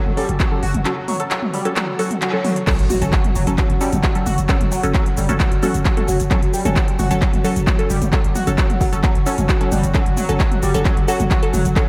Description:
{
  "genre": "driving peak-time techno",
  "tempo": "132 BPM",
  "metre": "4/4",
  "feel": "straight",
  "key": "F# minor",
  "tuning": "A4 = 440 Hz",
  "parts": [
    { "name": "analog drone", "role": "drone", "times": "0.1-11.9 s", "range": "F#3 to F#4", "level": "-30 LUFS", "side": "equal", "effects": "chorus, sidechain pumping" },
    { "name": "growling 808-style bass", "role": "bass", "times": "0.1-11.8 s", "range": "F#1", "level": "-26 LUFS", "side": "equal", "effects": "overdrive, sidechain pumping, low-pass filter" },
    { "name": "techno drum kit", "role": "drums", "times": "0.1-11.9 s", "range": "crash cymbal, handclaps, hi-hat, shaker, toms", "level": "-26 LUFS", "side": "equal", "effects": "sidechain pumping on toms, sidechain pumping on hats, sidechain pumping on cymbals, sidechain pumping on perc" },
    { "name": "overdriven synth lead", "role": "riff", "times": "0.2-11.8 s", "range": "F#3 to F#4", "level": "-28 LUFS", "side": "equal", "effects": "distortion, ensemble chorus, sidechain pumping, delay" },
    { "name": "filtered dub chord stab", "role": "stabs", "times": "0.2-11.8 s", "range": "F#3 to A4", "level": "-27 LUFS", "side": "equal", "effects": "phaser, cassette tape, sidechain pumping, delay" },
    { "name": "electronic kick drum", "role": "drums", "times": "0.4-11.9 s", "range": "none", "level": "-20 LUFS", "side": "equal", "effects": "none" },
    { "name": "impact", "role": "sound effects", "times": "2.7-4.5 s", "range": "none", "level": "-30 LUFS", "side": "equal", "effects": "none" }
  ],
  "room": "moderate lush hall reverb, RT60 1.8 s, digital ambience",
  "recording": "dreamy mix soaked in reverb",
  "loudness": "-18 LUFS",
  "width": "mono",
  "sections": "0.0-2.7 A section; 2.7-11.9 B section",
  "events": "band accent 2.2; drop 2.7-11.9; impact 2.7-4.5",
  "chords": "0.0 F#m"
}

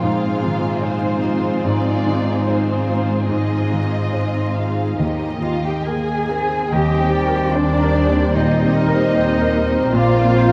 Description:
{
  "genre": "cinematic, emotional film score for orchestra",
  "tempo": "68-76 BPM",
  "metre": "4/4",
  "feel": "rubato",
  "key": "Eb major",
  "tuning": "A4 = 440 Hz",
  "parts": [
    { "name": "warm studio violin section", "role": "melody", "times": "0.0-10.5 s", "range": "C5 to F5", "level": "-33 LUFS", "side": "equal", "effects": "none" },
    { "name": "rich symphonic violin section", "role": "second line", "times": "0.0-10.5 s", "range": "Eb4 to Ab5", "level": "-30 LUFS", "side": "equal", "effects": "none" },
    { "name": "clear grand piano", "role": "accompaniment", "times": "0.0-10.5 s", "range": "Eb2 to C5", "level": "-25 LUFS", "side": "equal", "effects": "none" },
    { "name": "dark chamber viola section", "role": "accompaniment", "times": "0.0-10.5 s", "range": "Bb3 to G4", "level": "-28 LUFS", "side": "equal", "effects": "none" },
    { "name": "concert harp", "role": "arpeggios", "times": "0.0-10.5 s", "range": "Ab2 to Bb5", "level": "-27 LUFS", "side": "equal", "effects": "none" },
    { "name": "warm symphonic cello section", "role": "bass", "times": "0.0-10.5 s", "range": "Eb2 to Ab4", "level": "-24 LUFS", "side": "equal", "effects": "none" },
    { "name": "large flute ensemble", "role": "second line", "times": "5.4-10.5 s", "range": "D5 to Ab5", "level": "-29 LUFS", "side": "equal", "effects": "none" },
    { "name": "warm oboe", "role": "second line", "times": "6.7-10.5 s", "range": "Bb4 to Eb5", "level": "-29 LUFS", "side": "equal", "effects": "none" },
    { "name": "warm French horn section", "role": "sustained chords", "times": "6.7-10.5 s", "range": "F3 to C4", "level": "-26 LUFS", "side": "equal", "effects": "none" },
    { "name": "rich symphonic double bass section", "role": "bass", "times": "6.7-10.5 s", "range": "Bb1 to Eb2", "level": "-23 LUFS", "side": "equal", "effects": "none" }
  ],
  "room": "wet cathedral reverb, RT60 6.5 s",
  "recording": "in a vast, echoing space, vinyl crackle",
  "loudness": "-18 LUFS",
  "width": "mono",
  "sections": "0.0-6.7 A section; 6.7-10.5 A section",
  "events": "none",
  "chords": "0.1 Fm7/Ab; 5.0 Eb; 6.7 Eb6; 9.9 Bbsus2"
}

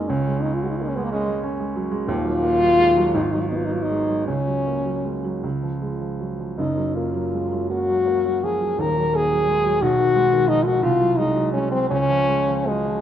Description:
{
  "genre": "classical, romantic duo for French horn and grand piano",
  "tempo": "48-63 BPM (dotted quarters)",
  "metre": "6/8",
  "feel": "rubato",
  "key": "F# major",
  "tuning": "A4 = 439 Hz",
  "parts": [
    { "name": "warm French horn", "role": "melody", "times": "0.0-13.0 s", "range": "G#3 to A#4", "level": "-20 LUFS", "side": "left 2 dB", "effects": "none" },
    { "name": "dark baby grand piano", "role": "accompaniment", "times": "0.0-13.0 s", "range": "D#1 to C#4", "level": "-24 LUFS", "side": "right 2 dB", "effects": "none" }
  ],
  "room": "moderate scoring stage reverb, RT60 1.6 s",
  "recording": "none",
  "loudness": "-19 LUFS",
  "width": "side -10 dB against mid",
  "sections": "0.0-13.0 A section",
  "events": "none",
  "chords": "0.1 C#5; 2.1 D#m; 3.1 G#m7; 4.3 F#/C#; 5.4 C#; 6.6 F#; 8.8 D#m; 9.8 G#m7/B; 10.8 G#7/B#; 11.9 C#"
}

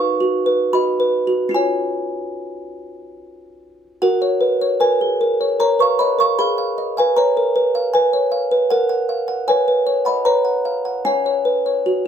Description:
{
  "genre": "classical, lullaby for music box",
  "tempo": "72-79 BPM",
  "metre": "3/4",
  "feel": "rubato",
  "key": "F# major",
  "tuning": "A4 = 438 Hz",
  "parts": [
    { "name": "music box", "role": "solo", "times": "0.0-12.1 s", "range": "C#4 to C#6", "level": "-16 LUFS", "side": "equal", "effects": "none" }
  ],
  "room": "light reverb",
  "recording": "none",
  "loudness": "-15 LUFS",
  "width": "side -8 dB against mid",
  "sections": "0.0-4.0 A section; 4.0-12.1 B section",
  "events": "none",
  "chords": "0.0 B/D#; 1.5 C#; 4.0 F#; 6.4 Fdim/Ab; 8.7 F#/A#; 10.2 F#add11/B; 11.0 C#sus4"
}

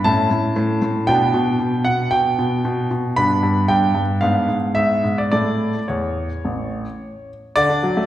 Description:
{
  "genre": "classical-period piano sonatina",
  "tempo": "105-117 BPM",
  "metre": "4/4",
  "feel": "rubato",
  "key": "unclear",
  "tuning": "A4 = 440 Hz",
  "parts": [
    { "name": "clear grand piano", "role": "solo", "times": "0.0-8.1 s", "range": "A1 to B5", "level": "-17 LUFS", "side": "equal", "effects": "none" }
  ],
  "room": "wet recital hall reverb, RT60 1.6 s",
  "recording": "heard from further back in the room",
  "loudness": "-17 LUFS",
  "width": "side -13 dB against mid",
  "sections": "0.0-7.6 A section",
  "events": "none",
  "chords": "0.1 A; 1.1 G/B; 3.2 G; 4.2 G#dim7; 5.3 A"
}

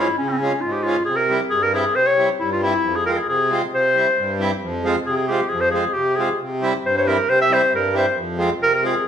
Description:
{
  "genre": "klezmer",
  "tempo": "135 BPM",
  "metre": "2/4",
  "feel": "straight",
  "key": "unclear",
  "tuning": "A4 = 440 Hz",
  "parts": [
    { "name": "bright clarinet", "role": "melody", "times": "0.0-9.1 s", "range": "C4 to E5", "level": "-18 LUFS", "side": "left 1 dB", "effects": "none" },
    { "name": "accordion", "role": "accompaniment", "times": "0.0-9.1 s", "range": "F2 to F4", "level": "-22 LUFS", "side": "right 1 dB", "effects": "none" }
  ],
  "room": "wet large studio reverb, RT60 1.1 s",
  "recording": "band playing live in one room",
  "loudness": "-17 LUFS",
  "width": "side -8 dB against mid",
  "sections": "0.0-4.6 A section; 4.6-9.1 B section",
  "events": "none",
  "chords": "0.0 Db; 1.1 C; 2.8 Fm; 3.7 C; 4.6 Fm; 6.4 C; 8.2 Fm"
}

